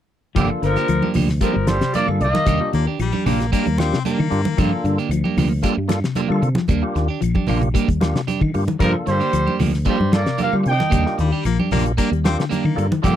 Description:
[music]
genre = afrobeat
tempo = 114 BPM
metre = 4/4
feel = straight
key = G minor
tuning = A4 = 438 Hz
[part]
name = semi-hollow electric guitar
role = arpeggios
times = 0.3-13.2 s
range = C3 to G3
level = -25 LUFS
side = left 7 dB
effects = spring reverb
[part]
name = mellow trumpet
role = melody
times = 0.4-2.7, 8.8-13.2 s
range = G4 to G5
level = -22 LUFS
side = right 1 dB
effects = none
[part]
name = raspy tenor saxophone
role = second line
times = 0.4-2.7, 8.8-13.2 s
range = D3 to Eb4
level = -27 LUFS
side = right 4 dB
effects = none
[part]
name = percussive tonewheel organ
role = accompaniment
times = 0.4-13.2 s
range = Bb3 to A4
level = -25 LUFS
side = left 1 dB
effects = slow rotary speaker, overdrive
[part]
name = electric guitar at the edge of break-up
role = stabs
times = 0.4-13.2 s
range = F3 to G4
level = -24 LUFS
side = right 10 dB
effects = none
[part]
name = fingered electric bass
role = bass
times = 0.4-13.2 s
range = G1 to G3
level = -21 LUFS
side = equal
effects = none
[part]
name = damped 70s drum kit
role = drums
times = 0.4-13.2 s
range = hi-hat, kick drum, snare drum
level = -23 LUFS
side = equal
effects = none
[part]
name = claves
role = percussion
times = 0.4-13.2 s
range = none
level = -40 LUFS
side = left 8 dB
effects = none
[part]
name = congas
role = percussion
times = 0.4-13.2 s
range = none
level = -25 LUFS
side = right 3 dB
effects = none
[part]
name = edgy baritone saxophone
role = second line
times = 2.7-5.1, 11.2-12.9 s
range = G3 to C4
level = -28 LUFS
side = left 8 dB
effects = slapback echo
[sound]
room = light reverb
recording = dry, close 1970s-style studio recording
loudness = -17 LUFS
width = side -11 dB against mid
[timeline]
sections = 0.4-13.2 A section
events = none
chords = 0.4 Gm7; 2.5 Ebmaj7; 4.6 Gm7; 6.7 Ebmaj7; 8.8 Gm7; 10.9 Ebmaj7

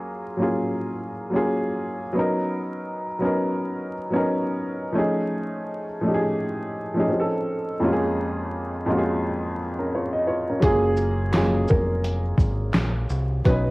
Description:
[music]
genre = lo-fi hip hop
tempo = 85 BPM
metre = 4/4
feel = swing 60% on 16ths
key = F# major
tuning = A4 = 440 Hz
[part]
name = warm upright piano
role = accompaniment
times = 0.0-13.7 s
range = E#2 to D#5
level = -23 LUFS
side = equal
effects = cassette tape
[part]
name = felt-muted upright piano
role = melody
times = 10.6-13.7 s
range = G#4 to B4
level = -25 LUFS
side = right 1 dB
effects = cassette tape
[part]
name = deep dub fingered electric bass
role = bass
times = 10.6-13.7 s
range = E#1 to B#1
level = -24 LUFS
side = equal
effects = none
[part]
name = lo-fi sampler-style drum kit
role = drums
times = 10.6-13.6 s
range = handclaps, hi-hat, kick drum, shaker, snare drum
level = -22 LUFS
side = equal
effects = none
[part]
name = finger snap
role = percussion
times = 11.3-12.9 s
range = none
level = -42 LUFS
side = right 2 dB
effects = none
[sound]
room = light reverb, studio ambience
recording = home recording on cassette, vinyl crackle, lossy compression artefacts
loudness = -22 LUFS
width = side -22 dB against mid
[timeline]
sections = 0.0-10.6 A section; 10.6-13.7 B section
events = none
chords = 0.0 F#maj7; 2.2 Bmaj9; 5.0 F7alt; 7.1 F7b13; 7.8 A#m7/E#; 10.6 F#maj7

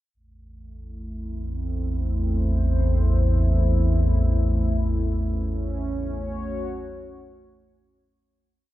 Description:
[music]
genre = dark ambient drone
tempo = free time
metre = none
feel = none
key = unclear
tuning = A4 = 441 Hz
[part]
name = deep rumbling drone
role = drone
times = 1.0-8.4 s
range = A1 to E2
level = -22 LUFS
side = equal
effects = built-in reverb
[part]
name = dark analog pad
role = sustained chords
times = 1.0-8.3 s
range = A3 to C#5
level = -30 LUFS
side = left 1 dB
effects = chorus
[sound]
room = light reverb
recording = dark, warm production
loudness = -21 LUFS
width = side -15 dB against mid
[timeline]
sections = 0.1-8.3 A section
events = fade-in on analog synth pad 0.1-8.3; fade-out 4.2-8.3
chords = 0.1 Am; 4.2 F#m

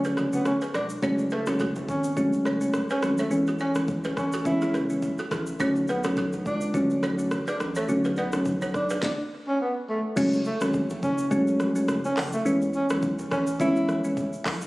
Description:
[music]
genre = afrobeats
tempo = 105 BPM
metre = 4/4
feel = swing 55% on 16ths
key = unclear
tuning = A4 = 441 Hz
[part]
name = breathy tenor saxophone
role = melody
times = 0.0-14.0 s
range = A3 to E4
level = -29 LUFS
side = equal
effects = digital delay
[part]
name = soft electric-piano-like synth keys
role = accompaniment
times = 0.0-14.2 s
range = D3 to C#4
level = -25 LUFS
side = equal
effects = chorus
[part]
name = balafon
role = riff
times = 0.0-9.0 s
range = E4 to D5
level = -34 LUFS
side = right 2 dB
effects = digital delay
[part]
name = saturated sub bass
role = bass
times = 0.0-13.7 s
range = E1 to C#2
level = -34 LUFS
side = equal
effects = none
[part]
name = afro-pop drum kit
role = drums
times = 0.0-14.7 s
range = crash cymbal, handclaps, hi-hat, kick drum, rim click, shaker, snare drum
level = -33 LUFS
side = equal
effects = none
[part]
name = congas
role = percussion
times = 0.1-14.6 s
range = none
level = -38 LUFS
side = right 1 dB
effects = none
[sound]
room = light reverb, digital ambience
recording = recorded on a phone in the room, studio reverb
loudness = -23 LUFS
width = side -20 dB against mid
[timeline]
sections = 0.0-10.2 A section; 10.2-14.7 B section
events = break 0.0-1.0; stop 9.0-10.2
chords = 0.0 Bm7; 1.0 F#madd9; 3.3 Amaj7; 5.6 Bm7; 10.2 F#madd9; 12.5 Amaj7

